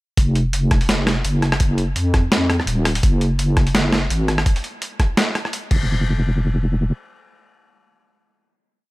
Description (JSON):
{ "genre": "half-time drum and bass", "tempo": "168 BPM", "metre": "4/4", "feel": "swing 55% on 16ths, half-time", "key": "unclear", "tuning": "A4 = 442 Hz", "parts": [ { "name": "deep soft wobble bass", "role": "bass", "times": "0.2-6.9 s", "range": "Eb1 to F2", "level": "-18 LUFS", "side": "equal", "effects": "chorus" }, { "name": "boom bap sampler-style drum kit", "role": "drums", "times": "0.2-5.8 s", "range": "crash cymbal, hi-hat, rim click, snare drum", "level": "-21 LUFS", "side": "equal", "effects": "none" }, { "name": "electronic kick drum", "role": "drums", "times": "0.2-5.8 s", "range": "none", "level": "-17 LUFS", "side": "equal", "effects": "none" } ], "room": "digital ambience", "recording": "none", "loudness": "-16 LUFS", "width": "side -20 dB against mid", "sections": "0.2-5.9 drop; 5.9-8.7 final hit", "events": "drop 0.2-5.9", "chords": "none" }